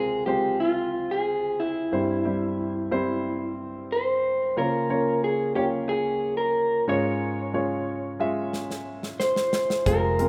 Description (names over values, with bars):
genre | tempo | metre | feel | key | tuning
piano-driven pop | 91 BPM | 4/4 | straight | unclear | A4 = 440 Hz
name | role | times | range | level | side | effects
electric guitar through a small old amp | melody | 0.0-10.3 s | E4 to Db5 | -28 LUFS | equal | spring reverb
warm grand piano | accompaniment | 0.0-10.3 s | G2 to E5 | -30 LUFS | equal | none
modern studio drum kit | drums | 8.5-10.3 s | hi-hat, kick drum, snare drum | -33 LUFS | equal | none
hollow-body short-scale fingered electric bass | bass | 9.9-10.3 s | F1 | -29 LUFS | equal | none
room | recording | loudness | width
light reverb, small room ambience | rough home demo mix | -26 LUFS | mono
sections
0.0-10.3 A section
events
drum fill 8.5-9.9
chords
0.0 Fm; 1.9 C; 4.6 Bbm/Db; 6.9 Db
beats
0.60 1.26 | 1.92 2.58 3.25 3.91 | 4.57 5.23 5.89 6.55 | 7.21 7.88 8.54 9.20 | 9.86